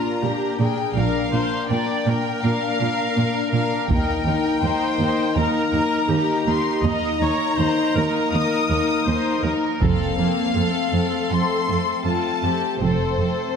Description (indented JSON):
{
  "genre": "cinematic, epic orchestral film score",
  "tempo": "81 BPM",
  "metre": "4/4",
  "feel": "straight",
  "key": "unclear",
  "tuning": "A4 = 441 Hz",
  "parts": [
    { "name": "warm symphonic violin section", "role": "melody", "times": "0.0-13.6 s", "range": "C5 to Eb6", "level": "-26 LUFS", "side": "left 4 dB", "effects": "none" },
    { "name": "warm symphonic violin section", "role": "second line", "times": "0.0-13.6 s", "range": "C4 to Bb4", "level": "-28 LUFS", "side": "left 3 dB", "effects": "none" },
    { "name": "rich chamber viola section", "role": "accompaniment", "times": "0.0-13.6 s", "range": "Bb3 to Eb5", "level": "-27 LUFS", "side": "right 1 dB", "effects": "none" },
    { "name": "clear French horn section", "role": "sustained chords", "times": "0.0-13.6 s", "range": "A3 to Eb4", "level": "-25 LUFS", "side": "left 4 dB", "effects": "none" },
    { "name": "warm symphonic cello section", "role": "bass", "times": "0.2-13.3 s", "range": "Eb2 to Bb2", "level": "-24 LUFS", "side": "right 4 dB", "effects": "none" },
    { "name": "warm symphonic double bass section", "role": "bass", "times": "1.0-13.2 s", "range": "F1 to Eb2", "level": "-27 LUFS", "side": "right 4 dB", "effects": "none" },
    { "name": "solo taiko drums", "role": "drums", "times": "3.9-5.3, 9.8-11.3 s", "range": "none", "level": "-26 LUFS", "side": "equal", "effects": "none" }
  ],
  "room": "wet concert hall reverb, RT60 2.3 s",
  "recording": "none",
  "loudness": "-19 LUFS",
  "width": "side -6 dB against mid",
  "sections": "0.0-13.6 A section",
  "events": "none",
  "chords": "0.0 Bb; 3.9 Eb; 9.8 F"
}